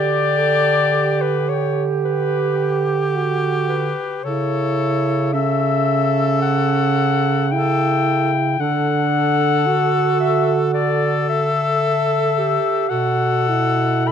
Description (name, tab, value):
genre	classical, lyrical piece for single-reed quartet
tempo	55 BPM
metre	4/4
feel	rubato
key	D major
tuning	A4 = 441 Hz
part	warm clarinet	melody	0.0-14.1 s	B4 to B5	-20 LUFS	left 8 dB	none
part	dark alto saxophone	second line	0.0-14.1 s	C#4 to A4	-22 LUFS	right 9 dB	none
part	bright tenor saxophone	accompaniment	0.0-14.1 s	G4 to A4	-24 LUFS	left 3 dB	none
part	warm bass clarinet	bass	0.0-14.1 s	B2 to D3	-22 LUFS	right 2 dB	none
room	light reverb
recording	close, detailed microphones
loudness	-16 LUFS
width	side -8 dB against mid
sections	0.0-14.1 A section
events	none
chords	0.0 Dsus4; 4.2 A7/C#; 8.6 D; 12.9 B5